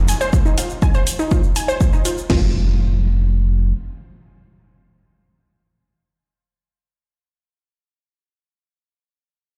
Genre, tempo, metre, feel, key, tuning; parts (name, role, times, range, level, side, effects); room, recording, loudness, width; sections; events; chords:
melodic techno; 122 BPM; 4/4; straight; F minor; A4 = 444 Hz
round analog bass; bass; 0.0-3.7 s; F1; -19 LUFS; equal; sidechain pumping
downlifter and impact; sound effects; 0.0-7.1 s; -32 LUFS; equal
unison pluck; arpeggios; 0.1-2.5 s; Eb4 to Ab5; -26 LUFS; equal; sidechain pumping, dub echo
electronic hi-hat; drums; 0.1-2.2 s; -27 LUFS; equal; overdrive
tube shaker; percussion; 0.1-2.3 s; -33 LUFS; equal
house drum kit; drums; 0.3-2.4 s; crash cymbal, kick drum, snare drum; -19 LUFS; equal
small room ambience; played on a big sound system in a bare room, large studio reverb; -18 LUFS; mono
0.0-2.3 A section; 2.3-6.2 B section
0.0 Fm7; 2.3 N.C.